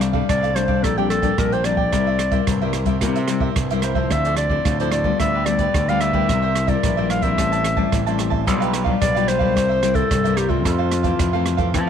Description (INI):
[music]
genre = samba and choro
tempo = 110 BPM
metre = 4/4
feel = straight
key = unclear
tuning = A4 = 441 Hz
[part]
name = cavaquinho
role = accompaniment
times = 0.0-11.9 s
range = D4 to A5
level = -27 LUFS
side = right 14 dB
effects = none
[part]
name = nylon-string guitar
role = accompaniment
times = 0.0-11.9 s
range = F2 to F4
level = -23 LUFS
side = left 13 dB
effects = none
[part]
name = growling fingered electric bass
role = bass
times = 0.0-11.9 s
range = A1 to F3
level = -23 LUFS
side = right 1 dB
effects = overdrive
[part]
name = open jazz drum kit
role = drums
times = 0.0-11.9 s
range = hi-hat, kick drum, rim click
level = -24 LUFS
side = right 3 dB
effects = none
[part]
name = mellow clarinet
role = melody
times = 0.3-11.9 s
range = F4 to F5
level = -22 LUFS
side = equal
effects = slapback echo
[sound]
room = light reverb, studio ambience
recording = 1960s-style stereo with parts hard left and right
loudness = -17 LUFS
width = side -8 dB against mid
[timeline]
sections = 0.0-11.9 A section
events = none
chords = 0.0 F69/C; 0.8 Bb69; 1.9 C7; 4.1 Dm9; 5.2 G7/D; 6.3 C7; 7.4 Am7; 8.5 G7/B; 9.6 C7; 10.7 Fmaj7